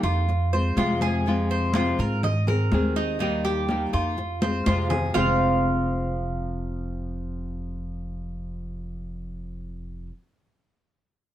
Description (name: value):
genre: latin, Cuban son and guajira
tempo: 123 BPM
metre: 4/4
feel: straight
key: F minor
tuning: A4 = 438 Hz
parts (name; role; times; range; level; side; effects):
- nylon-string guitar; accompaniment; 0.0-10.1 s; F2 to Ab4; -28 LUFS; left 3 dB; none
- Cuban tres; arpeggios; 0.0-10.1 s; Eb4 to F5; -27 LUFS; right 2 dB; none
- upright bass; bass; 0.0-10.1 s; F1 to Ab2; -28 LUFS; right 1 dB; none
- congas; percussion; 0.0-5.3 s; none; -29 LUFS; left 1 dB; none
room: light reverb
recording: close, detailed microphones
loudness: -22 LUFS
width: side -12 dB against mid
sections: 0.0-5.1 A section; 5.1-9.0 B section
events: drum fill 4.4-5.1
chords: 0.3 Fm; 2.2 Abadd9; 3.2 Eb; 4.2 Fm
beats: 0.28 0.77 | 1.25 1.74 2.23 2.71 | 3.20 3.68 4.17 4.66 | 5.14 5.63 6.12 6.60 | 7.09 7.58 8.06 8.55